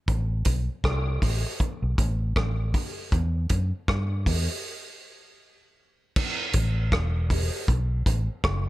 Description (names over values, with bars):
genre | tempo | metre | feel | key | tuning
dub reggae | 79 BPM | 4/4 | swing 57% on 16ths | E minor | A4 = 441 Hz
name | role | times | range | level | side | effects
vintage muted fingered electric bass | bass | 0.1-8.7 s | E1 to G2 | -25 LUFS | equal | none
vintage drum kit | drums | 0.1-8.6 s | crash cymbal, hi-hat, kick drum, rim click | -26 LUFS | equal | none
room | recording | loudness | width
little or no reverb | none | -23 LUFS | side -17 dB against mid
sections
0.0-6.2 A section; 6.2-8.7 B section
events
break 4.6-6.2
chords
none